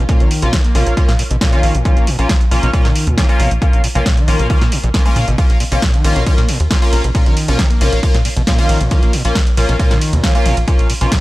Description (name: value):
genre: driving peak-time techno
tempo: 136 BPM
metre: 4/4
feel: straight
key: Bb minor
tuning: A4 = 438 Hz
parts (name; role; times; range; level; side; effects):
- screaming distorted acid line; riff; 0.0-11.2 s; Bb2 to Bb3; -22 LUFS; equal; distortion, analog chorus, sidechain pumping, tape echo
- tight sequencer bass; bass; 0.0-11.1 s; Ab1 to Bb2; -16 LUFS; equal; sidechain pumping
- sync-sweep polysynth; stabs; 0.1-11.1 s; Bb3 to F4; -20 LUFS; left 1 dB; phaser, lush chorus, sidechain pumping, tape echo
- electronic kick drum; drums; 0.1-11.2 s; none; -14 LUFS; equal; none
- punchy analog drum machine; drums; 0.1-11.2 s; hi-hat, ride cymbal, snare drum; -22 LUFS; equal; none
room: little or no reverb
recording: dry, gritty hardware recording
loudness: -11 LUFS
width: side -18 dB against mid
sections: 0.0-11.2 A section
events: none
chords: 0.0 Bbm